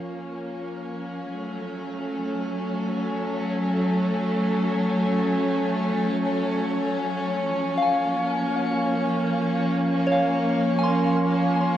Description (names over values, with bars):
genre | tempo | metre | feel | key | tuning
ambient | free time | none | none | unclear | A4 = 441 Hz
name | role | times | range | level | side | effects
dark chamber string section | sustained chords | 0.0-11.8 s | F3 to Db4 | -23 LUFS | equal | low-pass filter
soft synth bell | arpeggios | 7.8-11.8 s | Db5 to C6 | -25 LUFS | left 1 dB | chorus, phaser, ping-pong delay
room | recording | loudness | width
wet shimmer reverb, RT60 8.1 s | worn, warbling old tape, cassette tape, warbly pitch drift | -22 LUFS | side -11 dB against mid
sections
0.0-7.5 A section; 7.5-11.8 B section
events
fade-in on string section 0.0-7.5; filter sweep on string section 7.5-11.8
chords
0.0 Db6; 1.3 Gbm; 7.5 Db6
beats
free time